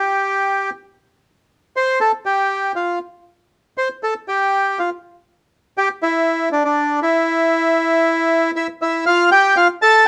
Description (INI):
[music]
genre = tango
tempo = 119 BPM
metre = 4/4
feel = rubato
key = unclear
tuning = A4 = 440 Hz
[part]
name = bandoneon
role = solo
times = 0.0-10.1 s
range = D4 to A5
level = -17 LUFS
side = equal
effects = none
[sound]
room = moderate club reverb, RT60 0.8 s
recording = none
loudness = -18 LUFS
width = mono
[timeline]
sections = 0.0-9.1 A section; 9.1-10.1 B section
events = none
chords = 0.0 N.C.; 9.1 Fadd9